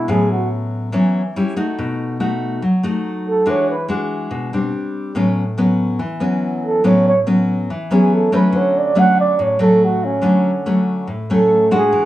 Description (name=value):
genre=bossa nova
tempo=142 BPM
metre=4/4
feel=straight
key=A major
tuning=A4 = 440 Hz
part: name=breathy flugelhorn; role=melody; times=0.0-0.5, 3.3-3.9, 6.7-12.1 s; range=C#4 to F#5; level=-16 LUFS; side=right 2 dB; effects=none
part: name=nylon-string guitar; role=accompaniment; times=0.0-12.1 s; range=A2 to F#4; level=-16 LUFS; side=left 1 dB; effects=none
room=moderate large studio reverb, RT60 0.9 s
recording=small room ambience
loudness=-15 LUFS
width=side -14 dB against mid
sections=0.0-12.1 A section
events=flugelhorn solo 0.0-12.1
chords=0.1 A69; 1.4 A7#11/G; 1.8 B7; 3.5 E9; 4.7 Gsus4; 5.2 A69; 8.5 Dmaj7